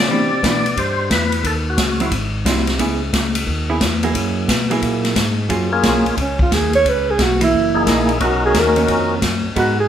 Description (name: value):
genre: soul jazz organ trio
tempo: 178 BPM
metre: 4/4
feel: swing 65% on 8ths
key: F# major from 5.5 s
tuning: A4 = 440 Hz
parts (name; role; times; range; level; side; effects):
- percussive tonewheel organ; melody; 0.0-2.1, 5.7-9.2 s; A#3 to D5; -19 LUFS; left 2 dB; slow rotary speaker
- tonewheel organ; bass; 0.0-9.9 s; F#1 to C3; -22 LUFS; equal; overdrive, slow rotary speaker
- vintage hollow-body jazz guitar; accompaniment; 0.1-9.8 s; D#3 to A#4; -22 LUFS; right 4 dB; none
- swinging big-band drum kit; drums; 0.4-9.7 s; hi-hat, kick drum, ride cymbal, snare drum; -19 LUFS; left 1 dB; none
- breathy alto saxophone; melody; 6.2-9.9 s; C#4 to C#5; -17 LUFS; right 2 dB; none
room: moderate large studio reverb, RT60 1.2 s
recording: band playing live in one room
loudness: -15 LUFS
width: side -9 dB against mid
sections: 0.0-5.5 A section; 5.5-9.9 B section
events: alto saxophone solo 5.5-9.9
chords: 0.1 Cmaj9; 1.4 F#m6; 2.1 G#7b13; 2.8 C#m7; 4.2 F#9; 5.5 F#maj9; 6.9 C#m7; 7.5 F#13; 8.2 Bmaj9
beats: | 0.10 0.44 0.77 1.11 | 1.45 1.79 2.12 2.46 | 2.80 3.14 3.48 3.81 | 4.15 4.49 4.83 5.17 | 5.50 5.84 6.18 6.52 | 6.86 7.19 7.53 7.87 | 8.21 8.55 8.89 9.22 | 9.56